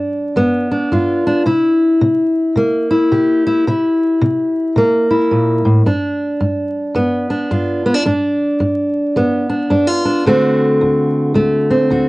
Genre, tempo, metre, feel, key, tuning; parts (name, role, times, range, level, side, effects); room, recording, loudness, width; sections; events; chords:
blues; 109 BPM; 4/4; swing 62% on 8ths; A4 = 436 Hz
fingerpicked steel-string acoustic guitar; solo; 0.0-12.1 s; D2 to G4; -13 LUFS; equal; cassette tape
moderate studio reverb, RT60 0.5 s; home recording on cassette, vinyl crackle, nothing above 10.8 kHz; -13 LUFS; side -20 dB against mid
0.0-12.1 A section
0.0 G7; 1.5 C7; 5.9 G7; 10.3 D7